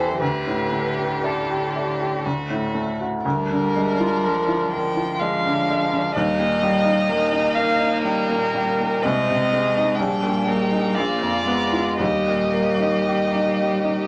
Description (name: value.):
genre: classical, slow romantic movement for piano quartet.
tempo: 61 BPM.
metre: 3/4.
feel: uneven beats, rubato.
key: Eb major from 3.2 s.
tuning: A4 = 435 Hz.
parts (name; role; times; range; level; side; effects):
rich violin; melody; 0.0-14.1 s; A4 to G5; -26 LUFS; equal; none.
bright cello; second line; 0.0-14.1 s; D3 to Bb3; -29 LUFS; equal; none.
clear violin; second line; 0.0-14.1 s; C4 to A4; -30 LUFS; equal; none.
clear baby grand piano; accompaniment; 0.0-14.1 s; Bb1 to D5; -25 LUFS; equal; none.
room: moderate large studio reverb, RT60 0.9 s.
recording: nothing above 10.8 kHz.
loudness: -21 LUFS.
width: mono.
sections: 0.0-14.1 A section.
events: none.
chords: 0.2 Dsus4; 2.3 D; 3.2 Bb7/D; 6.1 Eb; 9.0 Ab/C; 10.0 Eb/Bb; 10.9 Bb7b9; 12.0 Eb.